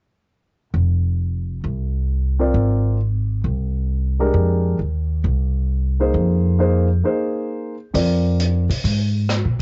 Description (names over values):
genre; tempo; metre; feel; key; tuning
modal jazz; 133 BPM; 4/4; swing 68% on 8ths; F dorian; A4 = 441 Hz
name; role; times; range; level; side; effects
upright bass; bass; 0.7-9.6 s; F1 to C3; -20 LUFS; equal; none
warm grand piano; accompaniment; 2.4-8.6 s; Ab3 to D5; -24 LUFS; equal; cassette tape
vintage drum kit; drums; 7.9-9.4 s; hi-hat, rim click; -30 LUFS; equal; cassette tape
room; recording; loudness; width
little or no reverb; home recording on cassette, nothing above 7.6 kHz; -20 LUFS; mono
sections
0.7-7.9 A section; 7.9-9.6 B section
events
break 7.0-7.9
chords
0.7 Fm11; 7.9 Fmadd11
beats
| 0.75 1.20 1.65 2.10 | 2.55 3.00 3.45 3.90 | 4.35 4.80 5.25 5.70 | 6.15 6.60 7.05 7.50 | 7.95 8.40 8.85 9.29